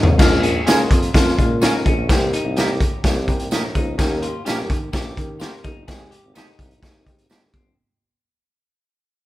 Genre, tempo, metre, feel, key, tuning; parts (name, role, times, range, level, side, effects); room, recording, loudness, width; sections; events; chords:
uptempo 1960s-style soul; 127 BPM; 4/4; straight; Bb dorian; A4 = 440 Hz
semi-hollow electric guitar; riff; 0.0-7.7 s; Bb3 to Ab4; -29 LUFS; left 4 dB
warm tuba; bass; 0.0-7.7 s; G1 to Eb3; -24 LUFS; equal
raw garage drum kit; drums; 0.0-7.6 s; crash cymbal, hi-hat, kick drum, snare drum, toms; -18 LUFS; equal
warm upright piano; accompaniment; 0.2-7.6 s; Ab3 to Bb5; -24 LUFS; left 1 dB
congas; percussion; 0.2-7.6 s; -36 LUFS; right 4 dB
tambourine; percussion; 0.2-7.4 s; -36 LUFS; right 5 dB
clean electric guitar; stabs; 0.7-7.4 s; Db4 to C5; -26 LUFS; right 3 dB
moderate large studio reverb, RT60 1.3 s; band playing live in one room; -16 LUFS; side -16 dB against mid
0.2-7.8 A section
drum fill 0.0; fade-out 0.2-7.8; upright piano fill 3.0-4.0
0.2 Bbm7; 2.1 Cm7; 4.0 Eb7; 5.9 Abmaj7